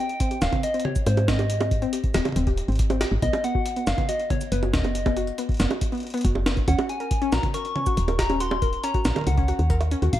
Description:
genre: IDM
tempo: 139 BPM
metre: 4/4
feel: straight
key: unclear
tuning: A4 = 439 Hz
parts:
  - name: soft struck synth lead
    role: melody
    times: 0.0-10.2 s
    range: B4 to Db6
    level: -29 LUFS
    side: left 1 dB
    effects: chorus, tape echo
  - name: warbly dusty pluck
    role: arpeggios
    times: 0.0-10.1 s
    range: B3 to Bb4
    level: -29 LUFS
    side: left 2 dB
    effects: chorus, ping-pong delay
  - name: jungle sampler-style drum kit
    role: drums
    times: 0.1-10.2 s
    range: bongos, cabasa, hi-hat, snare drum, toms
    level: -28 LUFS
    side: right 2 dB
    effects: none
  - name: electronic kick drum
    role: drums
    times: 0.2-10.2 s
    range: none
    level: -26 LUFS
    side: equal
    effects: none
  - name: woody FM bass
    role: bass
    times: 0.4-10.2 s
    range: Eb1 to Ab2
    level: -24 LUFS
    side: equal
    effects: none
room: light reverb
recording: dark, warm production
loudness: -21 LUFS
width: side -13 dB against mid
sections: 0.0-10.2 A section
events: none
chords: 0.0 Ab; 3.2 B; 6.7 Ebm7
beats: 0.20 0.63 1.07 | 1.50 1.93 2.36 2.79 | 3.22 3.66 4.09 4.52 | 4.95 5.38 5.81 6.25 | 6.68 7.11 7.54 7.97 | 8.40 8.84 9.27 9.70 | 10.13

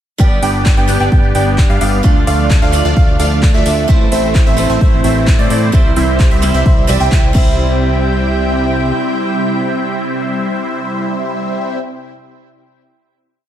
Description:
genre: EDM, festival progressive house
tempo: 130 BPM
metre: 4/4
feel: straight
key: C major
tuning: A4 = 439 Hz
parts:
  - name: picked steel-string acoustic guitar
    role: accompaniment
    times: 0.2-11.8 s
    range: G2 to E5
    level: -23 LUFS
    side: right 2 dB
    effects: sidechain pumping, ping-pong delay
  - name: lush unison pad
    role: sustained chords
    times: 0.2-11.8 s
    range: C3 to G5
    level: -21 LUFS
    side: equal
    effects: chorus, sidechain pumping
  - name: clear concert grand piano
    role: arpeggios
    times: 0.2-11.8 s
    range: D5 to G5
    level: -22 LUFS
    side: right 3 dB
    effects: sidechain pumping, ping-pong delay
  - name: supersaw stab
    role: riff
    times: 0.2-11.8 s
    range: G3 to G5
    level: -18 LUFS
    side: equal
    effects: phaser, sidechain pumping, ping-pong delay
  - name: fat analog bass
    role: bass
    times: 0.2-8.9 s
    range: G1 to A2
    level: -16 LUFS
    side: equal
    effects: sidechain pumping
  - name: electronic kick drum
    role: drums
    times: 0.2-7.4 s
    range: none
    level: -11 LUFS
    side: equal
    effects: none
  - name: house drum kit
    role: drums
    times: 0.4-7.4 s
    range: crash cymbal, handclaps, hi-hat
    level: -24 LUFS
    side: equal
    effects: none
room: light reverb, digital ambience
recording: none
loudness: -11 LUFS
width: side -11 dB against mid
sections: 0.2-7.6 drop; 7.6-11.3 final hit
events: drop 0.2-7.6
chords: 0.2 G; 2.0 Dm; 3.9 Am; 5.7 C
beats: | 0.20 0.66 1.12 1.58 | 2.04 2.50 2.96 3.43 | 3.89 4.35 4.81 5.27 | 5.73 6.20 6.66 7.12 | 7.58 8.04 8.50 8.96 | 9.43 9.89 10.35 10.81

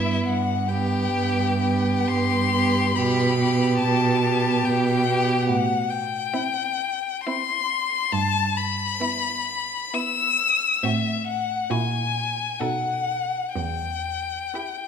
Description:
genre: classical, slow romantic movement for string quartet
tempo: 60-73 BPM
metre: 3/4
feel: rubato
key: unclear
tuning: A4 = 441 Hz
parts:
  - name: rich violin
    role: melody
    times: 0.0-14.9 s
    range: E5 to E6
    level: -24 LUFS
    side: left 7 dB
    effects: none
  - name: rich violin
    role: second line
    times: 0.0-14.9 s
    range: E4 to A4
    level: -30 LUFS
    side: left 1 dB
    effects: none
  - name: dark viola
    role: accompaniment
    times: 0.0-14.9 s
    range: B3 to E4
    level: -26 LUFS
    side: right 3 dB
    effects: none
  - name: rich cello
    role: bass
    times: 0.0-14.4 s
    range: E2 to B2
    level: -26 LUFS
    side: right 4 dB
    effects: none
room: wet recital hall reverb, RT60 1.8 s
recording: minimal, uncompressed stereo recording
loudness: -21 LUFS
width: side -7 dB against mid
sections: 0.0-14.9 A section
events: none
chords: 0.3 G; 3.0 G/B; 5.5 Am7; 8.1 Em/G; 10.8 F#m7b5/A; 11.7 F#7/A#; 12.6 B7; 13.6 Em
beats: | 0.27 1.13 2.08 | 2.96 3.81 4.66 | 5.48 6.32 7.25 | 8.12 9.00 9.94 | 10.83 11.70 12.61 | 13.56 14.54

